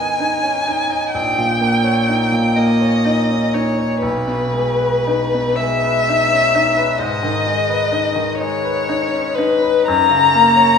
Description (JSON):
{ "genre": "classical, romantic duo for violin and grand piano", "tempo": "41 BPM (dotted quarters)", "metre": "6/8", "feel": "uneven beats, rubato", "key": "G# minor", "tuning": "A4 = 440 Hz", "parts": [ { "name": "warm violin", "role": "melody", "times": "0.0-10.8 s", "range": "B4 to A#5", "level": "-16 LUFS", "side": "left 3 dB", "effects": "none" }, { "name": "bright concert grand piano", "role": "accompaniment", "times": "0.0-10.8 s", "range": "A#1 to D#5", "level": "-18 LUFS", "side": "equal", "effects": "none" } ], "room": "wet recital hall reverb, RT60 1.3 s", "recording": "recorded in a church or concert hall, small room ambience", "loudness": "-14 LUFS", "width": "side -6 dB against mid", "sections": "0.0-10.8 A section", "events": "none", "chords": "0.0 G#m; 1.1 D#7/A#; 4.0 G#m/B; 7.0 G#m; 9.9 F#", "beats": "| 1.14 2.57 | 4.03 5.60 | 7.01 8.39 | 9.87" }